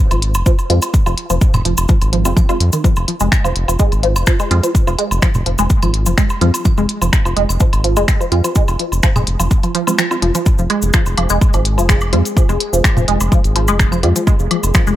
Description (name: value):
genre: minimal techno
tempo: 126 BPM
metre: 4/4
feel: straight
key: F minor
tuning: A4 = 438 Hz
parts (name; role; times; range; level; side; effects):
- resonant blip pluck; riff; 0.1-14.9 s; Eb3 to F4; -19 LUFS; equal; phaser, analog chorus, sidechain pumping, dub echo
- round analog bass; bass; 0.1-15.0 s; F1 to F2; -16 LUFS; equal; sidechain pumping
- minimal click drum kit; drums; 0.1-14.8 s; finger snaps, hi-hat; -20 LUFS; left 1 dB; none
- cabasa; percussion; 0.1-15.0 s; none; -26 LUFS; left 3 dB; none
- electronic woodblock, claves and toms; percussion; 0.1-15.0 s; none; -24 LUFS; right 1 dB; dub echo
- electronic kick drum; drums; 0.5-14.8 s; none; -13 LUFS; equal; none
- filtered dub chord stab; stabs; 0.7-14.1 s; Ab3 to F4; -23 LUFS; right 3 dB; phaser, dub echo
- bubbling stepped-filter texture; texture; 10.5-15.0 s; Ab3 to Ab4; -26 LUFS; left 2 dB; chorus, built-in reverb, sidechain pumping
room: little or no reverb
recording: none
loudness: -12 LUFS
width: side -13 dB against mid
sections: 0.0-10.5 A section; 10.5-15.0 B section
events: kick drops out 10.0-10.5; drop 10.5-15.0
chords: 0.0 Fm